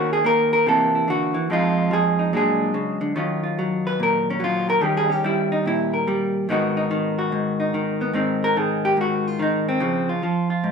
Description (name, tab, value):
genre	solo jazz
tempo	144 BPM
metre	4/4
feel	swing 65% on 8ths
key	Eb minor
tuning	A4 = 440 Hz
part	vintage hollow-body jazz guitar	solo	0.0-10.7 s	F2 to Cb5	-19 LUFS	equal	none
room	moderate stone room reverb, RT60 1.1 s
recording	band playing live in one room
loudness	-19 LUFS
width	side -6 dB against mid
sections	0.0-3.2 A section; 3.2-10.7 B section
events	hollow-body jazz guitar solo 3.2-10.7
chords	0.0 Eb5; 0.7 C7; 1.5 Fm7; 2.3 Bb7alt; 3.2 Ebm9; 4.8 Eb7; 6.5 Abm7; 8.1 Ab; 9.8 Db